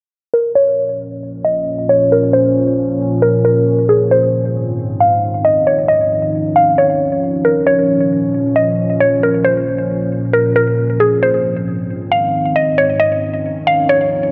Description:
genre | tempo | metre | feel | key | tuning
hip hop | 135 BPM | 4/4 | half-time | Bb minor | A4 = 440 Hz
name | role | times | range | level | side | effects
mallet-like synth pluck | melody | 0.3-14.3 s | Ab4 to F5 | -16 LUFS | equal | chorus, low-pass filter, delay
deep dark ambient pad | sustained chords | 0.9-14.3 s | Ab2 to Db4 | -20 LUFS | equal | chorus, built-in reverb, low-pass filter
room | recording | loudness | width
moderate lush hall reverb, RT60 2.6 s | none | -15 LUFS | mono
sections
0.3-14.3 A section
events
filter sweep 0.3-14.3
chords
0.3 Bbm; 3.9 Ab; 5.7 Dbadd9; 7.4 Bbm; 11.0 Ab; 12.8 Dbadd9

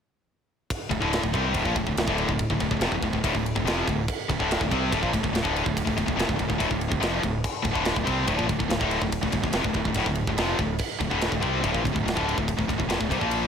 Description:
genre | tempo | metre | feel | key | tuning
heavy metal | 143 BPM | 4/4 | straight | D minor | A4 = 436 Hz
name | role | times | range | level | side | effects
tight metal drum kit | drums | 0.7-13.4 s | crash cymbal, kick drum, ride cymbal, snare drum | -28 LUFS | right 1 dB | none
high-gain distorted guitar | riff | 0.9-13.5 s | D2 to C4 | -27 LUFS | left 10 dB | distortion
scooped high-gain guitar | riff | 0.9-13.5 s | D2 to C4 | -29 LUFS | right 9 dB | distortion
modern bright fingered electric bass | bass | 0.9-13.5 s | D1 to C2 | -32 LUFS | right 1 dB | none
room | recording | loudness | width
small room ambience | none | -23 LUFS | side -7 dB against mid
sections
0.7-13.5 A section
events
none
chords
0.7 Dm

